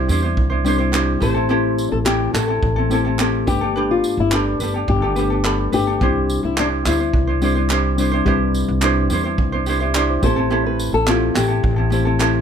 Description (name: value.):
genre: acoustic pop.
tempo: 106 BPM.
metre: 4/4.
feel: straight.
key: C major.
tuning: A4 = 443 Hz.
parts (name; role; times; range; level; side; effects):
reed electric piano; accompaniment; 0.0-12.4 s; G3 to E5; -24 LUFS; left 6 dB; none.
ukulele; accompaniment; 0.0-12.4 s; C4 to C5; -21 LUFS; right 3 dB; none.
upright bass; bass; 0.0-12.4 s; G1 to E2; -21 LUFS; equal; none.
unplugged drum kit; drums; 0.1-12.3 s; handclaps, kick drum, tambourine; -24 LUFS; right 1 dB; none.
group handclap; percussion; 0.9-12.3 s; none; -31 LUFS; right 5 dB; none.
flamenco guitar; melody; 1.2-12.2 s; D4 to C5; -22 LUFS; left 4 dB; none.
room: little or no reverb.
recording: none.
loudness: -16 LUFS.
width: side -8 dB against mid.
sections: 0.0-12.4 A section.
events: none.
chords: 0.0 Cadd9; 1.2 Am7; 3.5 Gadd9; 6.0 Cadd9; 10.2 Am7.